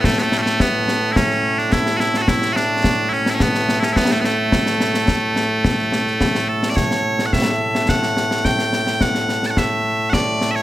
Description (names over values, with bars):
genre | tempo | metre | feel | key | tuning
scottish traditional, Scottish pipe music | 107 BPM | 4/4 | straight | A major | A4 = 440 Hz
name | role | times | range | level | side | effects
loud bright bagpipes | melody | 0.0-10.6 s | A2 to A5 | -18 LUFS | right 1 dB | none
concert snare drum and concert bass drum | drums | 0.0-10.6 s | none | -20 LUFS | left 1 dB | none
room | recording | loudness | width
moderate recital hall reverb, RT60 1.7 s | none | -16 LUFS | side -14 dB against mid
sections
0.0-6.8 A section; 6.8-10.6 B section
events
none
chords
none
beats
| 0.04 0.60 1.16 1.72 | 2.28 2.85 3.41 3.97 | 4.53 5.09 5.65 6.21 | 6.77 7.33 7.89 8.45 | 9.01 9.57 10.13